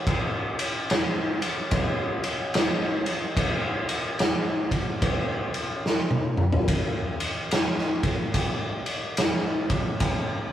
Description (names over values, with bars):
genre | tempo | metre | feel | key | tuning
metal | 72 BPM | 4/4 | swing 63% on 8ths | none | none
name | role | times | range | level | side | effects
raw garage drum kit | drums | 0.1-10.2 s | kick drum, ride cymbal, snare drum, toms | -23 LUFS | equal | none
room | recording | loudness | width
light reverb | rough rehearsal-room recording | -23 LUFS | side -11 dB against mid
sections
0.0-6.7 A section; 6.7-10.5 B section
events
drum fill 5.9-6.7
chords
none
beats
| 0.07 0.89 1.72 2.55 | 3.37 4.20 5.03 5.85 | 6.68 7.51 8.34 9.17 | 10.00